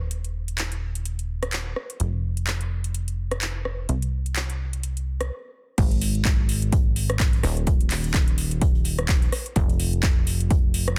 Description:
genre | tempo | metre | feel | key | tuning
piano house | 127 BPM | 4/4 | swing 57% on 16ths | unclear | A4 = 440 Hz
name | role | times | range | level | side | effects
plucky analog bass | bass | 0.0-11.0 s | Eb1 to C2 | -28 LUFS | equal | sidechain pumping
house drum kit | drums | 0.1-11.0 s | crash cymbal, handclaps, hi-hat, rim click | -31 LUFS | equal | overdrive
electronic kick drum | drums | 5.8-10.6 s | none | -23 LUFS | equal | none
unplugged drum kit | drums | 5.8-10.9 s | hi-hat, snare drum | -45 LUFS | equal | none
room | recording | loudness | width
little or no reverb | dense, heavily limited modern master | -24 LUFS | mono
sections
0.0-5.8 A section; 5.8-11.0 B section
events
stop 5.3-5.8; drop 5.8-11.0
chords
none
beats
| 0.11 0.58 1.06 1.53 | 2.00 2.47 2.95 3.42 | 3.89 4.36 4.83 5.31 | 5.78 6.25 6.72 7.20 | 7.67 8.14 8.62 9.09 | 9.56 10.03 10.51 10.98

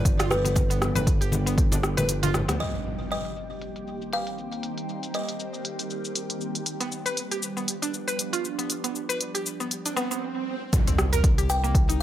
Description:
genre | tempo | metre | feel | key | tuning
afro house | 118 BPM | 4/4 | swing 56% on 16ths | C minor | A4 = 440 Hz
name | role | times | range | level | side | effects
buzzing kalimba | melody | 0.0-6.4, 11.5-12.0 s | B4 to G5 | -31 LUFS | left 1 dB | tape echo
ethereal airy pad | sustained chords | 0.0-10.2 s | Eb3 to G4 | -34 LUFS | right 2 dB | ensemble chorus, built-in reverb, phaser, sidechain pumping
mallet-like synth pluck | arpeggios | 0.0-2.6, 6.8-12.0 s | Bb3 to B4 | -31 LUFS | right 1 dB | lush chorus, sidechain pumping, tape echo
smooth synth bass | bass | 0.0-2.6, 10.7-12.0 s | G1 to D2 | -26 LUFS | equal | sidechain pumping
afro-pop drum kit | drums | 0.1-12.0 s | hi-hat, rim click, shaker, toms | -29 LUFS | equal | low-pass filter on hats, low-pass filter on perc, low-pass filter on snare, low-pass filter on toms
electronic kick drum | drums | 0.1-1.7, 10.7-11.9 s | none | -22 LUFS | equal | none
congas | percussion | 0.1-2.6 s | none | -29 LUFS | left 2 dB | none
impact and swell | sound effects | 2.6-4.6, 9.9-12.0 s | none | -34 LUFS | right 2 dB | none
room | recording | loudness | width
light reverb, digital ambience | none | -24 LUFS | side -12 dB against mid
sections
0.0-2.6 A section; 2.6-10.7 B section; 10.7-12.0 C section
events
kick drops out 2.1-2.6; drum fill 2.3; impact 2.6-4.6, 10.7-12.0; filter sweep on ambient pad 2.6-10.7; swell 9.9-10.7; stop 10.2-10.7; drop 10.7-12.0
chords
0.0 G7; 2.6 Cm7; 6.7 G7; 10.7 C7(no3)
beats
0.05 | 0.56 1.07 1.58 2.09 | 2.60 3.10 3.61 4.12 | 4.63 5.14 5.65 6.16 | 6.67 7.17 7.68 8.19 | 8.70 9.21 9.71 10.22 | 10.73 11.24 11.75

